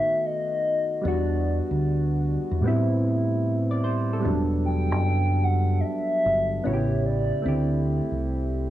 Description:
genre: lo-fi hip hop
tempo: 75 BPM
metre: 4/4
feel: swing 65% on 16ths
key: unclear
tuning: A4 = 439 Hz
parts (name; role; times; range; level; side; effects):
- hollow clarinet-like synth lead; melody; 0.0-8.2 s; C#5 to G5; -26 LUFS; equal; chorus
- soft electric-piano-like synth keys; accompaniment; 0.0-8.7 s; A2 to D5; -26 LUFS; equal; chorus
- deep dub fingered electric bass; bass; 1.0-8.7 s; E1 to E2; -24 LUFS; equal; none
room: light reverb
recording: cassette tape, small room ambience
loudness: -22 LUFS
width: side -13 dB against mid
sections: 0.0-4.2 A section; 4.2-8.7 B section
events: none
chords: 0.0 B7; 1.0 Em9; 2.6 Am7; 4.2 Em9; 6.6 A7; 7.4 D9sus4

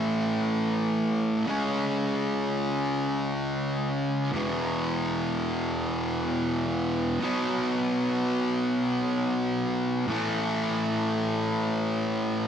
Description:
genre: rock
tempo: free time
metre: none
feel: none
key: A major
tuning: A4 = 442 Hz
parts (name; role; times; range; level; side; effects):
- fuzz guitar; solo; 0.0-12.5 s; E2 to C#4; -25 LUFS; equal; distortion, digital delay
room: light reverb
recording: none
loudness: -25 LUFS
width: side -8 dB against mid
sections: 0.0-12.5 A section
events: none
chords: 0.0 A5; 1.5 C#5; 4.4 E5; 7.2 B5; 10.1 A5

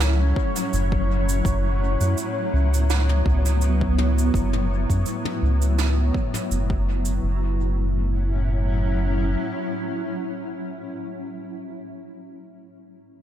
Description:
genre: ambient dub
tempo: 83 BPM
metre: 4/4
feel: swing 54% on 16ths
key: F# minor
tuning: A4 = 440 Hz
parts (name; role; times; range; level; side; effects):
- granular cloud pad; sustained chords; 0.0-10.9 s; A2 to E4; -27 LUFS; equal; built-in reverb
- round analog bass; bass; 0.0-9.4 s; F#1 to F#2; -21 LUFS; equal; none
- jazz brush drum kit; drums; 0.0-7.2 s; cabasa, snare drum, toms; -31 LUFS; right 2 dB; dub echo
- bubbling stepped-filter texture; texture; 0.0-7.2 s; C#5; -33 LUFS; left 2 dB; chorus, built-in reverb
- electronic kick drum; drums; 0.4-6.8 s; none; -25 LUFS; equal; overdrive
room: small room reverb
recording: none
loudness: -20 LUFS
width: side -11 dB against mid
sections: 0.0-7.2 A section; 7.2-10.1 B section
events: none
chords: 0.0 F#m7

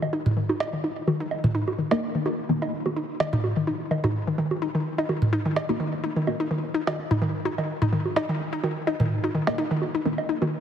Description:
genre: minimal techno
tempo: 127 BPM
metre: 4/4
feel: swing 54% on 16ths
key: unclear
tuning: A4 = 439 Hz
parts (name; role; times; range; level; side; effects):
- hollow square pluck; riff; 0.0-10.5 s; Eb3 to Eb4; -26 LUFS; left 2 dB; chorus, ping-pong delay
- punchy sub bass; bass; 0.0-10.4 s; Eb1 to Bb1; -47 LUFS; equal; none
- electronic bongos, toms and cowbell; percussion; 0.0-10.5 s; none; -27 LUFS; right 2 dB; none
- filtered dub chord stab; stabs; 1.9-2.6, 5.7-6.3, 9.5-10.1 s; Bb3 to Bb4; -30 LUFS; equal; phaser, ensemble chorus, digital delay
room: wet lush hall reverb, RT60 2.0 s, digital ambience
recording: heavily compressed radio sound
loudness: -23 LUFS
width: side -9 dB against mid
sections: 0.0-10.6 A section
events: filter sweep on synth arpeggio sound 0.0-10.6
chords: 0.0 Eb5

